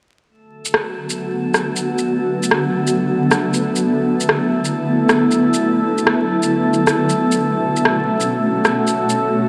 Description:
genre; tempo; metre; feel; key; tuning
future garage; 135 BPM; 4/4; swing 61% on 16ths; B minor; A4 = 439 Hz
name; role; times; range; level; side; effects
granular cloud pad; sustained chords; 0.9-9.5 s; B2 to F#4; -20 LUFS; equal; built-in reverb
drifting glass-harmonics texture; texture; 0.6-9.5 s; A3 to A4; -25 LUFS; equal; chorus, built-in reverb
electronic shaker and rim click; drums; 0.7-9.2 s; none; -22 LUFS; equal; vintage 12-bit sampler grit, studio reverb
room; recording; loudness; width
moderate huge ambient reverb, RT60 4.9 s; vinyl crackle; -17 LUFS; mono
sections
0.3-9.5 A section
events
filter sweep on ambient pad 0.3-9.5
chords
0.3 Bm7; 7.4 F#m/B

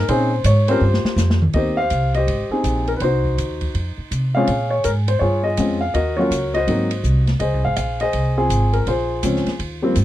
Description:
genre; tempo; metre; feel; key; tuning
jazz piano trio; 164 BPM; 4/4; swing 64% on 8ths; Ab major; A4 = 439 Hz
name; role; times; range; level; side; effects
warm grand piano; melody; 0.0-10.0 s; F3 to F5; -20 LUFS; left 1 dB; none
upright bass; bass; 0.0-10.0 s; Ab1 to C3; -20 LUFS; equal; none
open jazz drum kit; drums; 0.1-10.0 s; hi-hat, kick drum, ride cymbal, snare drum, toms; -28 LUFS; equal; none
room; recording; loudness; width
light reverb; dry, close 1970s-style studio recording; -17 LUFS; side -14 dB against mid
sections
0.0-1.5 A section; 1.5-10.0 B section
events
drum fill 0.8-1.5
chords
0.1 Bbm11; 0.8 Fsus2; 1.5 Abmaj7; 3.0 Cdim; 3.7 F5; 4.5 Bbm7; 5.9 Ebm7; 6.7 Ab7; 7.4 Dbmaj7 (rootless); 8.9 Bbm7

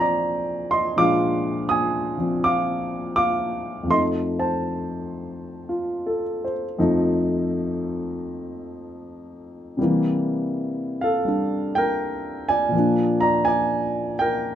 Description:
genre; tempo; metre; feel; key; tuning
solo jazz; 82 BPM; 4/4; swing 67% on 8ths, rubato; F mixolydian; A4 = 441 Hz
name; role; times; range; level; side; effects
warm grand piano; solo; 0.0-14.6 s; F2 to Eb6; -21 LUFS; equal; none
room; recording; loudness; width
moderate club reverb, RT60 0.5 s; dark, warm production; -20 LUFS; side -10 dB against mid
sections
0.0-14.6 A section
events
none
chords
0.0 Bb7; 3.9 F7; 9.8 C7; 12.7 Bb7

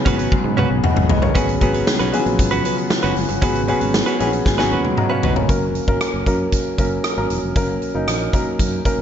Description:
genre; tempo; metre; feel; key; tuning
1980s-style pop; 116 BPM; 4/4; straight; F# major; A4 = 440 Hz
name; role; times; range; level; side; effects
warm baby grand piano; accompaniment; 0.0-9.0 s; E#3 to A#5; -21 LUFS; left 1 dB; none
glassy FM pad; sustained chords; 0.0-5.5 s; C#3 to F#4; -27 LUFS; left 2 dB; ensemble chorus, built-in reverb
direct-recorded clean electric guitar; riff; 0.1-5.4 s; C#4 to B4; -25 LUFS; right 5 dB; wide subtle chorus, digital delay
fretless electric bass; bass; 0.1-9.0 s; E1 to G#2; -24 LUFS; equal; ensemble chorus
big rock drum kit; drums; 0.1-9.0 s; hi-hat, kick drum, rim click, snare drum, toms; -20 LUFS; equal; gated reverb
room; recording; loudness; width
light reverb, small room ambience; nothing above 7.7 kHz; -16 LUFS; side -9 dB against mid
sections
0.0-1.4 A section; 1.4-5.5 B section; 5.5-9.0 C section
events
drum fill 0.3-1.4, 4.5-5.5; grand piano fill 3.9-5.5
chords
0.0 C#7sus4/G#; 1.4 C#7sus4; 5.5 F#

